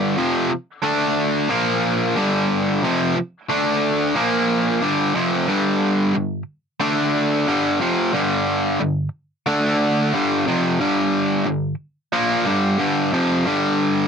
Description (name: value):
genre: rock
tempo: 90 BPM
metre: 4/4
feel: straight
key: G minor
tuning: A4 = 440 Hz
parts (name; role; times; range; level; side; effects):
- cranked stack guitar; solo; 0.0-14.1 s; F2 to D4; -17 LUFS; equal; overdrive
room: light reverb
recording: none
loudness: -18 LUFS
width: side -6 dB against mid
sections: 0.0-4.8 A section; 4.8-14.1 B section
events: none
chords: 0.0 G5; 0.8 D5; 1.5 Bb5; 2.2 G5; 3.5 D5; 4.2 Bb5; 4.8 G5; 6.8 D5; 7.5 G5; 9.5 D5; 10.2 Gm